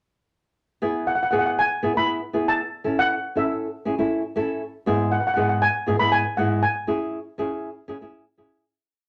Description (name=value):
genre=calypso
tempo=119 BPM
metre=4/4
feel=straight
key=E major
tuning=A4 = 441 Hz
part: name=flamenco guitar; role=accompaniment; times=0.8-8.6 s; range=G#2 to A4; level=-26 LUFS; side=equal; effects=none
part: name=steel pan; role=melody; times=1.1-7.6 s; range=E5 to B5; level=-24 LUFS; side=equal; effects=none
room=moderate studio reverb, RT60 0.6 s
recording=none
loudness=-23 LUFS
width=mono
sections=0.6-8.6 verse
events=fade-out 6.6-8.6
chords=0.6 E; 2.6 A; 4.6 E/G#; 6.6 C#m